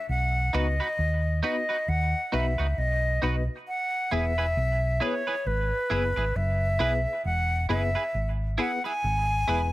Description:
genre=reggae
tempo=67 BPM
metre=4/4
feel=swing 58% on 16ths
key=E major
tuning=A4 = 440 Hz
part: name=breathy silver concert flute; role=melody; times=0.0-9.7 s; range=B4 to G#5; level=-28 LUFS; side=equal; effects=tape echo
part: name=hollow-body short-scale fingered electric bass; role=bass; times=0.1-9.7 s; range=E1 to D#2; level=-27 LUFS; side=equal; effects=none
part: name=clean electric guitar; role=accompaniment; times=0.5-9.6 s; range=D#4 to B4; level=-33 LUFS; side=right 4 dB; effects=analog chorus, tape echo
part: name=reed electric piano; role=stabs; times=0.5-9.7 s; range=B3 to B4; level=-32 LUFS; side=left 4 dB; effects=fast tremolo
room=moderate studio reverb, RT60 0.6 s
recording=none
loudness=-24 LUFS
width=side -17 dB against mid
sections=0.0-9.7 A section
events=none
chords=0.1 B; 3.7 E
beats=| 0.09 0.98 1.88 2.77 | 3.67 4.56 5.46 6.35 | 7.24 8.14 9.03

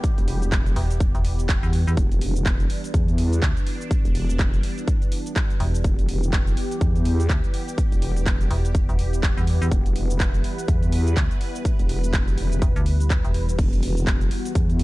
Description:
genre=bass house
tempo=124 BPM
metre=4/4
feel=swing 59% on 16ths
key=E minor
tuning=A4 = 440 Hz
part: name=sweeping resonant pad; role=sustained chords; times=0.0-14.8 s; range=E3 to B4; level=-31 LUFS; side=equal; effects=chorus, vintage 12-bit sampler grit, sidechain pumping
part: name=big-room dance drum kit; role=drums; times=0.0-14.8 s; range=crash cymbal, handclaps, hi-hat, shaker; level=-32 LUFS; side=right 1 dB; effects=none
part: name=electronic kick drum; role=drums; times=0.0-14.7 s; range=none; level=-22 LUFS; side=equal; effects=none
part: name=downlifter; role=sound effects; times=0.0-2.0 s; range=none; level=-46 LUFS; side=right 2 dB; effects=none
part: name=vowel-sweep wobble bass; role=bass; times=0.2-14.8 s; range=E1 to E2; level=-23 LUFS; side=equal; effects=chorus, overdrive, sidechain pumping
part: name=metallic FM bass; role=bass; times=0.8-13.6 s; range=E1 to E2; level=-22 LUFS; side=equal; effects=overdrive, sidechain pumping
room=digital ambience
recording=dark, warm production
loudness=-19 LUFS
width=side -19 dB against mid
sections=0.0-14.8 A section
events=none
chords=0.0 Em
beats=| 0.04 0.52 1.00 1.49 | 1.97 2.46 2.94 3.42 | 3.91 4.39 4.88 5.36 | 5.84 6.33 6.81 7.29 | 7.78 8.26 8.75 9.23 | 9.71 10.20 10.68 11.17 | 11.65 12.13 12.62 13.10 | 13.59 14.07 14.55

